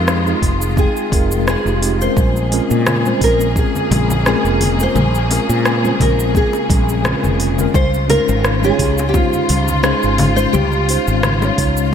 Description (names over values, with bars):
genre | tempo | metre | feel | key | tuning
sunset chillout | 86 BPM | 4/4 | swing 54% on 16ths | unclear | A4 = 440 Hz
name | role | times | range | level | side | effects
nylon-string guitar | melody | 0.0-11.9 s | F4 to C5 | -21 LUFS | equal | analog chorus, ping-pong delay
mellow tine electric piano | accompaniment | 0.0-11.9 s | Ab3 to G5 | -20 LUFS | left 1 dB | medium stereo tremolo, auto-pan, ping-pong delay
warm studio string section | sustained chords | 0.0-11.9 s | Db3 to Ab4 | -22 LUFS | left 2 dB | none
mellow fretless electric bass | bass | 0.0-11.9 s | F1 to Bb2 | -18 LUFS | right 1 dB | none
deep house drum kit | drums | 0.1-11.9 s | congas, hi-hat, rim click, shaker | -21 LUFS | left 1 dB | gated reverb
electronic kick drum | drums | 0.4-11.7 s | none | -17 LUFS | right 1 dB | none
bongos and congas | percussion | 2.2-11.6 s | none | -25 LUFS | left 2 dB | none
room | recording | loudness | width
moderate lush hall reverb, RT60 1.9 s, small room ambience | bright 1980s-style digital production | -13 LUFS | side -8 dB against mid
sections
0.0-11.9 A section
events
none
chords
0.0 Fm7; 2.2 Bbm7; 7.8 Dbmaj7